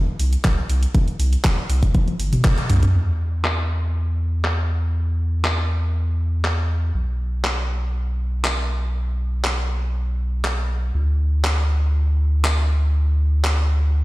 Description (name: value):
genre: progressive house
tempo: 120 BPM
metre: 4/4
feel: straight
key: unclear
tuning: A4 = 440 Hz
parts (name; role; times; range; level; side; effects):
- round analog bass; bass; 0.2-14.0 s; G1 to E2; -20 LUFS; equal; sidechain pumping
- house drum kit; drums; 0.2-13.6 s; handclaps, hi-hat, toms; -24 LUFS; equal; low-pass filter on hats, low-pass filter on snare, low-pass filter on toms, low-pass filter on room
- electronic kick drum; drums; 0.4-2.6 s; none; -18 LUFS; equal; none
room: little or no reverb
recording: played on a big sound system in a bare room, stone room reverb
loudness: -18 LUFS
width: side -19 dB against mid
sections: 0.0-2.9 A section; 2.9-14.0 B section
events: drum fill 1.9-2.9; band accent 2.4; filter sweep on drum 2.9-14.0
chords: none